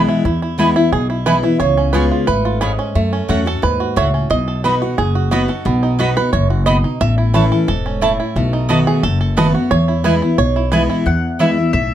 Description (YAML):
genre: bluegrass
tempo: 178 BPM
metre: 4/4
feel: straight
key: E major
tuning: A4 = 442 Hz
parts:
  - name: bluegrass banjo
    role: melody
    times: 0.0-11.5 s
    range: A3 to E5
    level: -20 LUFS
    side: right 5 dB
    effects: none
  - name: picked steel-string acoustic guitar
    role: accompaniment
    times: 0.0-11.9 s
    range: E2 to G#4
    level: -17 LUFS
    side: left 2 dB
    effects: none
  - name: upright bass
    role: bass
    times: 0.0-11.9 s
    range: E1 to F#2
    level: -19 LUFS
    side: equal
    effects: none
  - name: mandolin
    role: stabs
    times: 0.6-11.5 s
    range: A3 to B5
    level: -19 LUFS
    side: right 4 dB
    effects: none
  - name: mandolin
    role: melody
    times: 11.1-11.9 s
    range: E5 to F#5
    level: -21 LUFS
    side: left 4 dB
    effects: none
room: moderate studio ambience, RT60 0.4 s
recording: dark, warm production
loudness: -13 LUFS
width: side -11 dB against mid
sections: 0.3-11.1 A section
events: five-string banjo solo 0.0-11.1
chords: 0.3 E; 1.6 C#7; 3.0 F#m; 4.3 B; 7.0 A; 8.4 B7; 9.7 E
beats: | 0.25 0.59 0.93 1.27 | 1.60 1.94 2.28 2.62 | 2.95 3.29 3.63 3.97 | 4.30 4.64 4.98 5.32 | 5.66 5.99 6.33 6.67 | 7.01 7.34 7.68 8.02 | 8.36 8.69 9.03 9.37 | 9.71 10.05 10.38 10.72 | 11.06 11.40 11.74